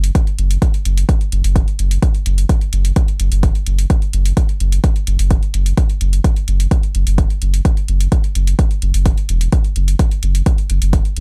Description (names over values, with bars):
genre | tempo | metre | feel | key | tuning
dub techno | 128 BPM | 4/4 | straight | unclear | A4 = 441 Hz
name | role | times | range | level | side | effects
soft dub sub bass | bass | 0.0-11.2 s | E1 to F#1 | -17 LUFS | equal | sidechain pumping
electronic hi-hat | drums | 0.0-11.2 s | none | -30 LUFS | equal | none
electronic kick drum | drums | 0.2-11.0 s | none | -17 LUFS | equal | none
room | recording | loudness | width
little or no reverb | none | -16 LUFS | mono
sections
0.0-11.2 A section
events
none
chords
none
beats
| 0.15 0.62 1.09 1.56 | 2.02 2.49 2.96 3.43 | 3.90 4.37 4.84 5.31 | 5.78 6.24 6.71 7.18 | 7.65 8.12 8.59 9.06 | 9.53 9.99 10.46 10.93